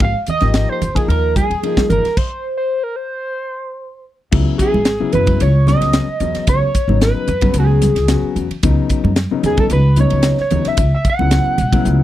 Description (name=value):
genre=electric jazz fusion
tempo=112 BPM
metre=4/4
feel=straight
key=C# minor from 4.3 s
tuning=A4 = 440 Hz
part: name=overdriven synth lead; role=melody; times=0.0-12.0 s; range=Ab4 to F#5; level=-20 LUFS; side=equal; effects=distortion, chorus, phaser
part: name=hollow-body jazz guitar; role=second line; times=0.0-12.0 s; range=Ab4 to F#5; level=-25 LUFS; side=right 7 dB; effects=none
part: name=upright bass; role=bass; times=0.0-12.0 s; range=G1 to B2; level=-16 LUFS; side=equal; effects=none
part: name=crisp fusion drum kit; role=drums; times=0.0-12.0 s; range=crash cymbal, hi-hat, kick drum, ride cymbal, snare drum, toms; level=-18 LUFS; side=equal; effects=none
part: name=congas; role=percussion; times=0.3-11.8 s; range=none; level=-23 LUFS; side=right 4 dB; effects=none
part: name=dark concert grand piano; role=accompaniment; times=0.4-12.0 s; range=C#3 to Bb4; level=-21 LUFS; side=left 9 dB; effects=none
room=little or no reverb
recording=dry, close 1970s-style studio recording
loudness=-13 LUFS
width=side -13 dB against mid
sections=0.0-4.3 A section; 4.3-12.0 B section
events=stop 2.2-4.3; drum fill 11.9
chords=0.0 Ab5; 2.2 N.C.; 4.3 C#m7; 8.6 Badd9/C#; 10.8 F#7sus4/C#